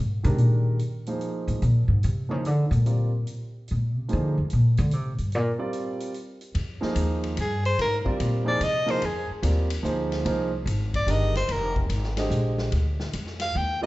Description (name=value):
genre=modal jazz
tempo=146 BPM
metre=3/4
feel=swing 66% on 8ths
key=F dorian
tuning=A4 = 440 Hz
part: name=upright bass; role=bass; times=0.0-13.9 s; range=F1 to D3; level=-24 LUFS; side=equal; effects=none
part: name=warm grand piano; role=accompaniment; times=0.2-13.9 s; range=D3 to Eb5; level=-30 LUFS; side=right 2 dB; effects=none
part: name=swinging big-band drum kit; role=drums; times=0.2-13.5 s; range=hi-hat, kick drum, ride cymbal, snare drum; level=-36 LUFS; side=left 1 dB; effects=none
part: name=breathy soprano saxophone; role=melody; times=7.4-13.9 s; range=Ab4 to G5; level=-26 LUFS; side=left 1 dB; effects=none
room=moderate recital hall reverb, RT60 1.4 s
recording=recorded in a church or concert hall, nothing above 7.9 kHz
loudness=-23 LUFS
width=side -18 dB against mid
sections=0.0-6.6 A section; 6.6-13.9 A section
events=upright bass solo 0.0-6.6; soprano saxophone solo 6.6-13.9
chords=0.0 Fm9; 1.6 Gm7; 6.6 Fm9; 11.5 Gm7/F